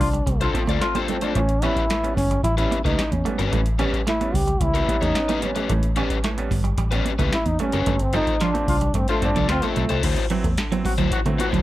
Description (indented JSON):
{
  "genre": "funk",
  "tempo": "111 BPM",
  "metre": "4/4",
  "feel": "straight",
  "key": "A mixolydian",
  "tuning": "A4 = 441 Hz",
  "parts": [
    { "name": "mellow trombone", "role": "melody", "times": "0.0-10.0 s", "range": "A3 to G4", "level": "-25 LUFS", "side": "equal", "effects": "plate reverb" },
    { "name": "bright trombone", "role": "second line", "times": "0.0-1.0, 8.4-11.5 s", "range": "F4 to F#4", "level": "-28 LUFS", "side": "left 3 dB", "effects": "tube saturation, plate reverb" },
    { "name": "bright upright piano", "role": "stabs", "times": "0.0-11.6 s", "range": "G2 to C#4", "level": "-31 LUFS", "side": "right 3 dB", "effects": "plate reverb" },
    { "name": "vintage muted fingered electric bass", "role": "bass", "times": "0.0-11.6 s", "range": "F#1 to D3", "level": "-24 LUFS", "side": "equal", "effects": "none" },
    { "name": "booming analog drum machine", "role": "drums", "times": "0.0-11.6 s", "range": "crash cymbal, hi-hat, kick drum, snare drum", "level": "-25 LUFS", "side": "equal", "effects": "none" },
    { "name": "congas", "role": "percussion", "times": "0.0-11.6 s", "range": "none", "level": "-33 LUFS", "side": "right 6 dB", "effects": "none" },
    { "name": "clean electric guitar", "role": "riff", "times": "0.1-11.6 s", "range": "F3 to C#4", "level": "-30 LUFS", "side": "right 5 dB", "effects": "spring reverb" },
    { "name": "crunchy overdriven guitar", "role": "accompaniment", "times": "0.4-11.6 s", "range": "C#4 to D5", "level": "-27 LUFS", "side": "left 6 dB", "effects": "plate reverb" }
  ],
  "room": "light reverb",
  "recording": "none",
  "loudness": "-19 LUFS",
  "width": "side -15 dB against mid",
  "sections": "0.0-10.0 A section; 10.0-11.6 B section",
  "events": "band accent 0.0-1.4, 7.9-10.0; trombone solo 0.0-10.0",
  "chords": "0.0 G9sus4; 1.4 A9; 7.9 G9sus4; 10.0 D9",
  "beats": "0.27 0.81 | 1.36 1.90 2.44 2.99 | 3.53 4.07 4.61 5.16 | 5.70 6.24 6.79 7.33 | 7.87 8.41 8.95 9.50 | 10.04 10.58 11.12"
}